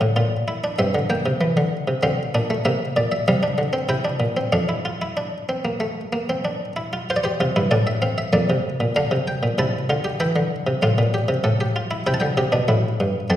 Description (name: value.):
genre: classical, baroque-style 3-part fugue for harpsichord.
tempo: 96 BPM.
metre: 4/4.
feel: straight.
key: F major.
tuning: A4 = 440 Hz.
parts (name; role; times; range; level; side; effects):
buff-stop harpsichord; solo; 0.0-13.4 s; F2 to A5; -19 LUFS; equal; none.
room: wet recital hall reverb, RT60 1.4 s.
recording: recorded in a church or concert hall.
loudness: -19 LUFS.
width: side -12 dB against mid.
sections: 0.0-7.1 A section; 7.1-13.4 B section.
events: none.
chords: 0.0 Gm; 0.8 C/G; 2.0 Bb; 3.3 F5/C; 3.9 C7; 4.5 F5; 7.1 F; 8.3 Gm7/F; 9.6 C; 10.8 F/A; 12.1 C.